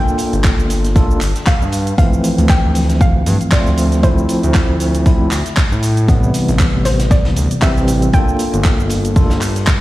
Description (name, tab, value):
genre	deep house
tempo	117 BPM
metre	4/4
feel	swing 56% on 16ths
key	D minor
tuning	A4 = 440 Hz
part	soft round pluck	melody	0.0-9.8 s	C5 to G5	-24 LUFS	equal	chorus, tape echo
part	overdriven tine electric piano	stabs	0.0-9.4 s	C3 to A4	-18 LUFS	equal	fast tremolo, vintage 12-bit sampler grit, sidechain pumping, ping-pong delay
part	house drum kit	drums	0.1-9.8 s	handclaps, hi-hat, rim click, shaker	-23 LUFS	right 1 dB	none
part	raw garage drum kit	drums	0.2-9.8 s	hi-hat, snare drum	-33 LUFS	left 1 dB	high-pass filter on hats, high-pass filter on snare, high-pass filter on room
part	smooth gliding synth bass	bass	0.3-9.8 s	F1 to A2	-17 LUFS	equal	sidechain pumping
part	electronic kick drum	drums	0.4-9.8 s	none	-13 LUFS	equal	none
room	little or no reverb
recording	played on a big sound system in a bare room, large studio reverb, vinyl crackle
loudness	-12 LUFS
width	side -16 dB against mid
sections	0.0-9.8 A section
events	none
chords	0.0 Gm7; 2.0 Dm7; 5.8 Am7; 8.1 Gm7